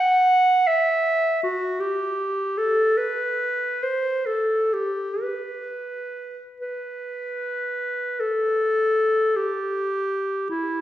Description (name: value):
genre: classical, free, expressive piece for unaccompanied clarinet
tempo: 30-55 BPM (dotted quarters)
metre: 6/8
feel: rubato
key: unclear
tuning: A4 = 440 Hz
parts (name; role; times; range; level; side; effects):
- clear clarinet; solo; 0.0-10.8 s; E4 to F#5; -21 LUFS; equal; none
room: wet recital hall reverb, RT60 1.7 s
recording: heard from further back in the room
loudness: -21 LUFS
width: side -13 dB against mid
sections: 0.0-8.2 A section; 8.2-10.8 B section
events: none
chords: none